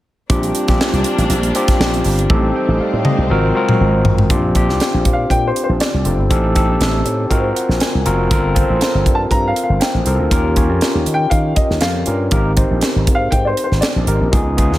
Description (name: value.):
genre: polished 1980s jazz-funk pop.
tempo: 120 BPM.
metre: 4/4.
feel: swing 54% on 16ths.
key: Bb major.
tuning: A4 = 440 Hz.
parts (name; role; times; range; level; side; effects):
overdriven tine electric piano; accompaniment; 0.3-14.8 s; Cb4 to Bb5; -18 LUFS; left 1 dB; wide subtle chorus.
rich studio string section; sustained chords; 0.3-4.3 s; Gb3 to D4; -24 LUFS; equal; none.
slap bass with an envelope filter; bass; 0.3-14.8 s; F1 to Eb3; -17 LUFS; equal; none.
crisp fusion drum kit; drums; 0.3-14.8 s; hi-hat, kick drum, snare drum, toms; -18 LUFS; equal; gated reverb.
dark baby grand piano; melody; 5.1-14.2 s; C5 to Bb5; -21 LUFS; left 1 dB; digital delay.
room: light reverb, studio ambience.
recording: none.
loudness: -13 LUFS.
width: side -15 dB against mid.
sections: 0.3-4.3 A section; 4.3-14.8 B section.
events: drum fill 2.3-4.3; tine electric piano fill 7.3-8.3.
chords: 0.3 Bb69; 2.3 Am7b5; 3.3 Ab13; 4.3 Bb69; 6.3 Am7b5; 7.3 Ab13; 8.3 Gm11; 10.3 Eb9; 12.3 Abmaj9.